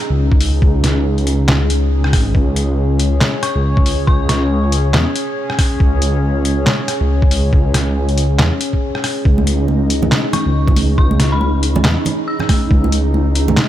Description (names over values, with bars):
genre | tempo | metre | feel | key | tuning
deep dubstep | 139 BPM | 4/4 | swing 59% on 16ths, half-time | unclear | A4 = 440 Hz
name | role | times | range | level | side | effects
dark analog pad | sustained chords | 0.0-13.7 s | C#4 to C#5 | -22 LUFS | left 1 dB | chorus, phaser
dark detuned saw bass | bass | 0.1-13.6 s | G#1 to E2 | -15 LUFS | equal | none
electronic kick drum | drums | 0.3-12.8 s | none | -14 LUFS | equal | none
trip hop sampler-style drum kit | drums | 0.4-13.7 s | handclaps, hi-hat, rim click, snare drum | -18 LUFS | equal | none
dark detuned synth bell | melody | 3.4-4.6, 10.3-12.9 s | B5 to E6 | -26 LUFS | left 2 dB | chorus, dub echo
flickering grainy texture | texture | 9.4-13.7 s | D#4 | -25 LUFS | right 1 dB | built-in reverb
congas | percussion | 9.4-13.6 s | none | -21 LUFS | right 4 dB | none
room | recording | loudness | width
digital ambience | none | -13 LUFS | side -12 dB against mid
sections
0.0-13.7 A section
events
break 8.8-9.3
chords
0.0 C#sus2